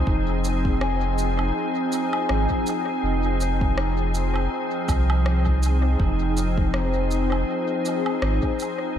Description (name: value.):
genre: ambient dub.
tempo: 81 BPM.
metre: 4/4.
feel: swing 56% on 16ths.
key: F minor.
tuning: A4 = 440 Hz.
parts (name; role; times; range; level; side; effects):
soft additive organ-like pad; sustained chords; 0.0-9.0 s; F3 to Ab4; -25 LUFS; right 1 dB; ensemble chorus, built-in reverb.
vibraphone with soft mallets; arpeggios; 0.0-9.0 s; C4 to Ab5; -29 LUFS; left 5 dB; tape echo.
warm sub bass; bass; 0.0-9.0 s; F1 to C2; -23 LUFS; equal; none.
electronic kick drum; drums; 0.1-8.6 s; none; -25 LUFS; equal; small room ambience.
electronic shaker, rim click and woodblock; drums; 0.4-8.8 s; none; -33 LUFS; right 1 dB; small room ambience, dub echo.
room: light reverb, digital ambience.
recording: none.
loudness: -20 LUFS.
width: side -9 dB against mid.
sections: 0.0-9.0 A section.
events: none.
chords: 0.0 Fm7.